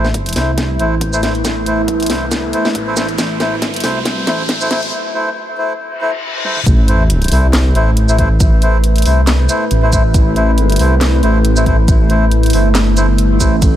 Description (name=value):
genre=deep dubstep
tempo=138 BPM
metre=4/4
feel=swing 55% on 16ths, half-time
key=A dorian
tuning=A4 = 436 Hz
part: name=deep dark ambient pad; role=sustained chords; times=0.0-13.8 s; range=A3 to B4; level=-20 LUFS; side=equal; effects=chorus, built-in reverb
part: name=melodica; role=stabs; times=0.0-13.6 s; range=A3 to C5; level=-19 LUFS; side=left 1 dB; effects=low-pass filter, dub echo
part: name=dark detuned saw bass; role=bass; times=0.0-13.8 s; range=G1 to C2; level=-14 LUFS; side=equal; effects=none
part: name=garage drum kit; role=drums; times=0.0-13.7 s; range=handclaps, hi-hat, ride cymbal, shaker, snare drum, toms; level=-20 LUFS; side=equal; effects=studio reverb
part: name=riser, reverse cymbal and sub drop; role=sound effects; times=1.4-8.4 s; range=none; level=-24 LUFS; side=left 1 dB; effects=none
part: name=electronic kick drum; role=drums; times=0.1-13.7 s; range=none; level=-14 LUFS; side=equal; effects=high-pass filter on kick, studio reverb
room=digital ambience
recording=high-pass filter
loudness=-11 LUFS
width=side -12 dB against mid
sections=0.0-6.7 A section; 6.7-13.8 B section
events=build-up 0.0-6.7; drum fill 0.0-4.9, 6.4; filter sweep 0.0-6.7; riser 1.4-4.9; break 4.9-6.7; reverse cymbal 6.0-6.7; drop 6.7-13.8; impact 6.7-8.4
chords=0.0 Am